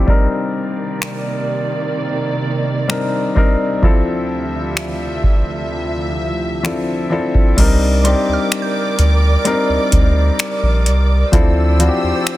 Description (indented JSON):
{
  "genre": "contemporary R&B",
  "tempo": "64 BPM",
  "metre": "4/4",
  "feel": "straight",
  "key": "C dorian",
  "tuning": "A4 = 440 Hz",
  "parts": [
    { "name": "warm grand piano", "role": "accompaniment", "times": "0.0-12.4 s", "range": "F3 to Bb4", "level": "-19 LUFS", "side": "left 2 dB", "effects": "low-pass filter" },
    { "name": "warm studio string section", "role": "sustained chords", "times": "0.1-12.4 s", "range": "D2 to E6", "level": "-23 LUFS", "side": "right 3 dB", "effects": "sidechain pumping, low-pass filter" },
    { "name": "booming analog drum machine", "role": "drums", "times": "0.1-12.4 s", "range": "crash cymbal, finger snaps, hi-hat, kick drum", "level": "-16 LUFS", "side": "equal", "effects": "soft clipping on snare" },
    { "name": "round analog bass", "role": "bass", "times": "7.6-12.1 s", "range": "Bb1 to E2", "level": "-14 LUFS", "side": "equal", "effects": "none" },
    { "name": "mallet-like synth pluck", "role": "texture", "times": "8.1-11.4 s", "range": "C6 to G6", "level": "-30 LUFS", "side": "right 6 dB", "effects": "chorus, tape echo" }
  ],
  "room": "digital ambience",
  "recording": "dense, heavily limited modern master",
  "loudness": "-14 LUFS",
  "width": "side -16 dB against mid",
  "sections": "0.0-7.6 A section; 7.6-12.4 B section",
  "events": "filter sweep 0.0-7.6",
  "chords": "0.1 Cm9; 3.8 Dm9; 7.6 Cm9; 11.3 Dm9"
}